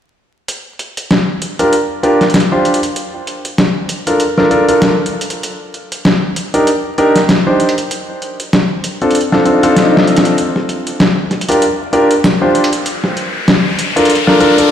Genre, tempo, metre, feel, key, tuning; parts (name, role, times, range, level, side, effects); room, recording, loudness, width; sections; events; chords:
glitch hop; 97 BPM; 4/4; swing 57% on 16ths; A4 = 441 Hz
boom bap sampler-style drum kit; drums; 0.5-14.7 s; hi-hat, snare drum; -14 LUFS; equal; small room reverb
warm concert grand piano; stabs; 1.6-14.7 s; C4 to C5; -12 LUFS; equal; low-pass filter, digital delay
swell and riser; sound effects; 9.5-14.7 s; -19 LUFS; left 1 dB
moderate lush hall reverb, RT60 2.6 s; played on a big sound system in a bare room, large studio reverb, vinyl crackle; -10 LUFS; side -9 dB against mid
0.5-10.4 A section; 10.4-14.7 B section
swell 9.5-10.4; drum fill 9.8-10.4; build-up 10.4-14.7; riser 10.4-14.7
0.5 Dmadd11; 3.0 Dm; 5.4 Cm7; 7.9 F6/C; 10.4 Dmadd11; 12.9 Dm